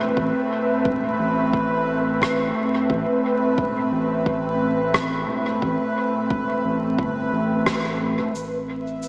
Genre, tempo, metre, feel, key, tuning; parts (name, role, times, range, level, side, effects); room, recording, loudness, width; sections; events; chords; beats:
ambient dub; 88 BPM; 4/4; swing 54% on 16ths; A minor; A4 = 441 Hz
airy breathy pad; sustained chords; 0.0-9.1 s; A2 to E5; -22 LUFS; equal; chorus
round analog bass; bass; 0.0-9.1 s; E1 to A1; -30 LUFS; equal
bubbling stepped-filter texture; texture; 0.0-9.1 s; B4 to E5; -26 LUFS; equal; chorus, built-in reverb
electronic kick drum; drums; 0.2-7.8 s; -27 LUFS; equal
rim click and cabasa; drums; 2.2-9.1 s; -28 LUFS; equal; dub echo
wet lush hall reverb, RT60 2.0 s; vinyl crackle, small speaker sound; -19 LUFS; side -28 dB against mid
0.0-8.3 A section
band accent 7.7-8.0
0.0 Amadd9; 8.3 Am
| 0.17 0.85 1.53 2.21 | 2.89 3.58 4.26 4.94 | 5.62 6.30 6.99 7.67 | 8.35 9.03